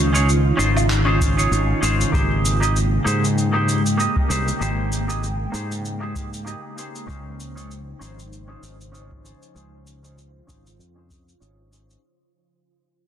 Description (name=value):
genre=sunset chillout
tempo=97 BPM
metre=4/4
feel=swing 56% on 16ths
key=unclear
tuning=A4 = 440 Hz
part: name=semi-hollow electric guitar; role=accompaniment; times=0.0-12.0 s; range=Bb3 to Eb5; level=-25 LUFS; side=moving between left 3 dB and right 3 dB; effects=auto-pan, low-pass filter, digital delay
part: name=ethereal airy pad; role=sustained chords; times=0.0-12.0 s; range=Db3 to G5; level=-26 LUFS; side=right 1 dB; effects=ensemble chorus, built-in reverb
part: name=fretless electric bass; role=bass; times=0.0-11.9 s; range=Ab1 to Ab2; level=-22 LUFS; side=equal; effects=none
part: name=electronic cabasa, woodblock and handclaps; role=drums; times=0.1-12.0 s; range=none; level=-28 LUFS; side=equal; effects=none
part: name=electronic kick drum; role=drums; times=1.2-11.2 s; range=none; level=-24 LUFS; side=equal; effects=none
room=light reverb, digital ambience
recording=dense, heavily limited modern master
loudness=-18 LUFS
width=side -9 dB against mid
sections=0.0-12.0 A section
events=fade-out 0.0-12.0; filter sweep on clean electric guitar 0.0-12.0; filter sweep on ambient pad 0.0-12.0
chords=0.0 Dbmaj9; 2.1 Abmaj9; 7.1 Dbmaj9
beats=0.28 0.90 1.51 | 2.13 2.75 3.37 3.99 | 4.61 5.22 5.84 6.46 | 7.08 7.70 8.32 8.94 | 9.55 10.17 10.79 11.41